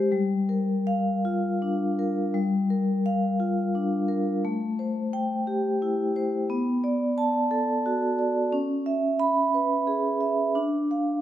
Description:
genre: classical, contemporary piece for solo vibraphone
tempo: 58 BPM (dotted quarters)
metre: 6/8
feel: rubato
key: unclear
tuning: A4 = 440 Hz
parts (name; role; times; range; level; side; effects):
- vibraphone with medium mallets; solo; 0.0-11.2 s; G3 to B5; -23 LUFS; equal; none
room: moderate recital hall reverb, RT60 1.7 s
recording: none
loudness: -23 LUFS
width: side -12 dB against mid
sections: 0.0-2.3 A section; 2.3-11.2 B section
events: none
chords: 0.1 Gm7; 4.4 Am7; 6.5 Bm7; 8.5 C#m7; 10.6 Dm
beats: | 0.12 1.24 | 2.34 3.40 | 4.43 5.46 | 6.48 7.49 | 8.52 9.53 | 10.56

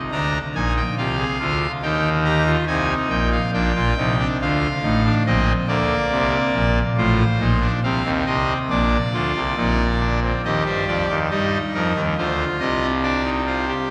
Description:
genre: classical, baroque-style 3-part fugue for pipe organ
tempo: 70 BPM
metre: 4/4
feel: straight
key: C minor from 10.4 s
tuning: A4 = 440 Hz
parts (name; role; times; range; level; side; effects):
- pipe organ, trumpet; solo; 0.1-13.9 s; A1 to Bb5; -20 LUFS; equal; none
room: wet church reverb, RT60 2.6 s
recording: none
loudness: -20 LUFS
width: mono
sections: 0.0-10.4 A section; 10.4-13.9 B section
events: none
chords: 0.1 Bb7; 1.8 Eb; 3.5 Bb; 5.3 Cm7/Bb; 7.0 F7/A; 8.7 Bb; 10.4 Cm/Eb (rootless); 12.2 Ebmaj13/C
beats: | 0.12 0.98 1.83 2.69 | 3.54 4.40 5.25 6.11 | 6.97 7.83 8.70 9.57 | 10.44 11.31 12.18 13.04 | 13.90

